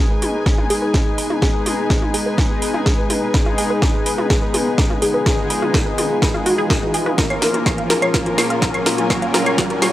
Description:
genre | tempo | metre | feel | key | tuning
melodic techno | 125 BPM | 4/4 | straight | G# dorian | A4 = 439 Hz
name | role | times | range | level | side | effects
deep dark ambient pad | sustained chords | 0.4-9.9 s | A#2 to G#4 | -26 LUFS | left 1 dB | chorus, built-in reverb, sidechain pumping
wide unison pluck | arpeggios | 0.0-9.9 s | F#4 to C#6 | -24 LUFS | equal | cassette tape, sidechain pumping, tape echo
brassy analog pad | stabs | 0.0-9.9 s | G#3 to A#4 | -23 LUFS | left 2 dB | chorus, sidechain pumping, tape echo
riser | sound effects | 3.2-9.9 s | none | -29 LUFS | right 1 dB | none
warm studio string section | texture | 0.0-9.9 s | C#4 to G#5 | -29 LUFS | left 1 dB | sidechain pumping
house drum kit | drums | 0.2-9.9 s | claves, hi-hat, snare drum, toms | -21 LUFS | equal | high-pass filter on snare, sidechain pumping on toms, high-pass filter on toms, sidechain pumping on hats, high-pass filter on hats, sidechain pumping on perc, high-pass filter on perc
electronic kick drum | drums | 0.5-9.7 s | none | -19 LUFS | equal | none
room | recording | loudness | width
light reverb | dry, gritty hardware recording, high-pass filter | -15 LUFS | side -14 dB against mid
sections
0.0-9.9 A section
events
build-up 0.0-9.9; drum fill 0.0-9.9; filter sweep on synth pluck 0.0-9.9; filter sweep 0.0-9.9; riser 3.2-9.9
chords
0.0 G#m; 7.2 A#m7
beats
0.46 0.94 | 1.42 1.90 2.38 2.86 | 3.34 3.82 4.30 4.78 | 5.26 5.74 6.22 6.70 | 7.18 7.66 8.14 8.62 | 9.10 9.58

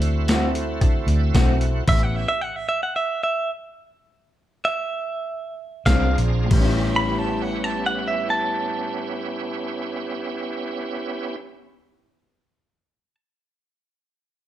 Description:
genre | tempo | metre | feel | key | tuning
straight-eighth soul blues | 90-113 BPM | 4/4 | straight | A mixolydian | A4 = 441 Hz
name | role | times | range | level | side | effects
direct-recorded clean electric guitar | melody | 0.0-13.1 s | D5 to B5 | -24 LUFS | right 2 dB | none
bright tonewheel organ | accompaniment | 0.0-2.3, 5.9-11.4 s | A3 to Bb5 | -28 LUFS | right 3 dB | slow rotary speaker, overdrive, chorus vibrato
vintage muted fingered electric bass | bass | 0.0-2.2, 5.9-11.4 s | A1 to D3 | -22 LUFS | equal | none
boom bap sampler-style drum kit | drums | 0.0-2.0, 5.9-6.7 s | crash cymbal, hi-hat, kick drum, snare drum, tambourine | -21 LUFS | equal | none
electric guitar through a small old amp | stabs | 0.3-1.5, 5.9-11.5 s | A2 to F#4 | -27 LUFS | left 2 dB | none
room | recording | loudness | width
moderate large studio reverb, RT60 1.2 s | band playing live in one room | -20 LUFS | side -12 dB against mid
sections
0.0-6.5 A section; 6.5-11.8 B section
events
tonewheel organ fill 0.8-1.9, 5.5-6.5; slowing down 1.9-6.5; stop 1.9-5.9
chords
0.0 D7; 1.9 A7; 5.9 Bb9; 6.5 A7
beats
0.28 0.81 1.34 | 1.88 2.41 2.95 3.50 | 4.06 4.64 5.24 5.86 | 6.51 7.17 7.84 8.50 | 9.17 9.83 10.49 11.16

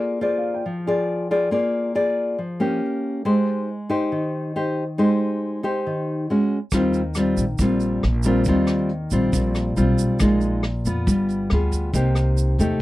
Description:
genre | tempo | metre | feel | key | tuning
bossa nova | 138 BPM | 4/4 | straight | Eb major | A4 = 440 Hz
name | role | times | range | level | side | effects
nylon-string guitar | accompaniment | 0.0-12.8 s | Bb2 to D5 | -20 LUFS | left 1 dB | none
clear grand piano | accompaniment | 0.2-10.2 s | Bb4 to G5 | -38 LUFS | right 7 dB | none
upright bass | bass | 6.7-12.8 s | G1 to F2 | -22 LUFS | equal | none
vintage brush drum kit | drums | 6.7-12.7 s | hi-hat, kick drum, rim click | -26 LUFS | equal | none
tube shaker | percussion | 6.7-12.8 s | none | -36 LUFS | right 11 dB | none
room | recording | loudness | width
light reverb | dry, close 1970s-style studio recording | -19 LUFS | side -16 dB against mid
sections
0.0-12.8 A section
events
none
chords
0.0 Bb7; 2.8 Bbm6; 3.2 Abmaj7; 6.3 Ab7sus4; 6.7 Eb69; 10.2 Bb7sus4; 11.1 G7b9; 11.9 Cm7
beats
0.20 0.64 1.07 | 1.51 1.94 2.38 2.81 | 3.25 3.68 4.11 4.55 | 4.98 5.42 5.85 6.29 | 6.72 7.16 7.59 8.03 | 8.46 8.89 9.33 9.76 | 10.20 10.63 11.07 11.50 | 11.93 12.37 12.80

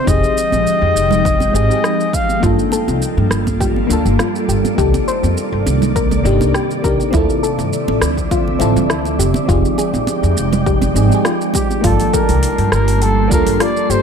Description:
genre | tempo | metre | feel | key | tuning
sunset chillout | 102 BPM | 4/4 | swing 53% on 16ths | G minor | A4 = 439 Hz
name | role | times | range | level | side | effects
warm flugelhorn | melody | 0.0-2.4, 11.6-14.0 s | G4 to F5 | -18 LUFS | left 1 dB | digital delay
mellow FM electric piano | accompaniment | 0.0-14.0 s | Bb3 to A5 | -21 LUFS | moving between left 6 dB and right 1 dB | chorus, phaser, auto-pan, ping-pong delay
ethereal airy pad | sustained chords | 0.0-14.0 s | C3 to A5 | -20 LUFS | right 2 dB | ensemble chorus, built-in reverb
upright bass | bass | 0.1-14.0 s | F1 to G2 | -17 LUFS | equal | tube saturation
deep house drum kit | drums | 0.1-14.0 s | hi-hat, rim click, shaker | -23 LUFS | right 1 dB | overdrive
electronic kick drum | drums | 0.1-13.4 s | none | -20 LUFS | equal | overdrive
congas | percussion | 0.5-11.8 s | none | -24 LUFS | right 4 dB | none
soft round pluck | arpeggios | 2.4-14.0 s | E4 to C5 | -23 LUFS | left 5 dB | chorus, ping-pong delay
wind-like tuned noise texture | texture | 3.3-14.0 s | D5 to C6 | -28 LUFS | right 5 dB | built-in reverb
room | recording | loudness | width
light reverb, digital ambience | none | -13 LUFS | side -7 dB against mid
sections
0.0-11.8 A section; 11.8-14.0 B section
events
none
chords
0.0 Fm9; 2.4 Gm9; 4.8 Cm9; 7.1 Dm9; 9.2 Fm9; 11.8 Gm9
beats
| 0.08 0.66 1.25 1.84 | 2.43 3.02 3.60 4.19 | 4.78 5.37 5.96 6.55 | 7.13 7.72 8.31 8.90 | 9.49 10.08 10.66 11.25 | 11.84 12.43 13.02 13.61

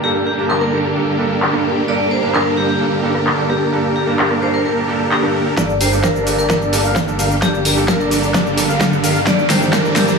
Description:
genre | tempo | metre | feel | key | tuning
EDM, festival progressive house | 130 BPM | 4/4 | straight | G minor | A4 = 440 Hz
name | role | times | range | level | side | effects
vibraphone with hard mallets | melody | 0.0-10.2 s | G4 to D5 | -21 LUFS | left 2 dB | dub echo
clear concert grand piano | accompaniment | 0.0-10.1 s | G2 to A5 | -22 LUFS | right 5 dB | sidechain pumping, dub echo
rich studio string section | sustained chords | 0.0-10.2 s | D3 to G4 | -25 LUFS | left 2 dB | sidechain pumping, low-pass filter
dense compressed supersaw | riff | 0.0-10.2 s | Bb3 to G5 | -20 LUFS | right 1 dB | sidechain pumping, low-pass filter, dub echo
big-room dance drum kit | drums | 0.0-10.2 s | handclaps, hi-hat, rim click, shaker, snare drum | -20 LUFS | equal | overdrive, low-pass filter on perc, low-pass filter on snare, low-pass filter on hats, low-pass filter on cymbals, low-pass filter on toms
wide unison lead | arpeggios | 5.6-10.2 s | D5 to G5 | -24 LUFS | left 2 dB | lush chorus, sidechain pumping, dub echo
wide detuned saw bass | bass | 5.6-10.2 s | G1 | -24 LUFS | equal | chorus, sidechain pumping
electronic kick drum | drums | 5.6-9.8 s | none | -20 LUFS | equal | overdrive, high-pass filter on kick
riser | sound effects | 7.0-10.2 s | none | -22 LUFS | right 2 dB | none
room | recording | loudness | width
moderate lush hall reverb, RT60 2.3 s | high-pass filter, studio ambience | -14 LUFS | side -4 dB against mid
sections
0.0-5.6 A section; 5.6-10.2 B section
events
build-up 5.6-10.2; drum fill 5.6-10.2; filter sweep on supersaw synth 5.6-10.2; filter sweep on analog synth lead 5.6-10.2; riser 7.0-10.2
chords
0.0 Gmadd9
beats
| 0.04 0.50 0.96 1.42 | 1.88 2.35 2.81 3.27 | 3.73 4.19 4.65 5.11 | 5.58 6.04 6.50 6.96 | 7.42 7.88 8.35 8.81 | 9.27 9.73

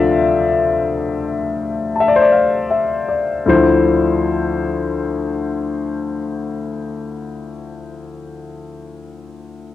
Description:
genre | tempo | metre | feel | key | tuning
jazz ballad | 51-63 BPM | 4/4 | swing 68% on 8ths | D minor | A4 = 443 Hz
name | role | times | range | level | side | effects
warm grand piano | solo | 0.0-9.7 s | D2 to A5 | -16 LUFS | left 3 dB | cassette tape
room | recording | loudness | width
moderate small room reverb, RT60 0.5 s | home recording on cassette | -15 LUFS | side -12 dB against mid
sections
0.0-3.5 A section; 3.5-8.1 B section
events
slowing down 0.0-3.5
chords
0.0 Dm7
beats
0.23 1.23 2.30 | 3.45 4.62 5.78 6.94

